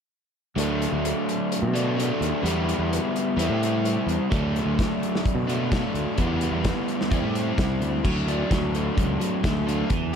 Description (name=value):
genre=indie rock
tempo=129 BPM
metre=4/4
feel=straight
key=D major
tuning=A4 = 440 Hz
part: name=crunchy overdriven guitar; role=riff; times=0.6-10.2 s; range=E3 to E4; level=-25 LUFS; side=equal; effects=lush chorus
part: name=growling fingered electric bass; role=bass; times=0.6-10.2 s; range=C2 to B2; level=-27 LUFS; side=equal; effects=overdrive
part: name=loose indie drum kit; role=drums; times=0.6-10.0 s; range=crash cymbal, hi-hat, kick drum, snare drum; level=-28 LUFS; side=equal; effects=none
room=moderate huge ambient reverb, RT60 8.6 s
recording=dreamy mix soaked in reverb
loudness=-22 LUFS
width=side -7 dB against mid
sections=0.6-8.0 A section; 8.0-10.2 B section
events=none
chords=0.6 D; 2.4 Em; 3.4 C/E; 4.3 D; 6.2 Em; 7.1 Cadd9/E; 8.0 D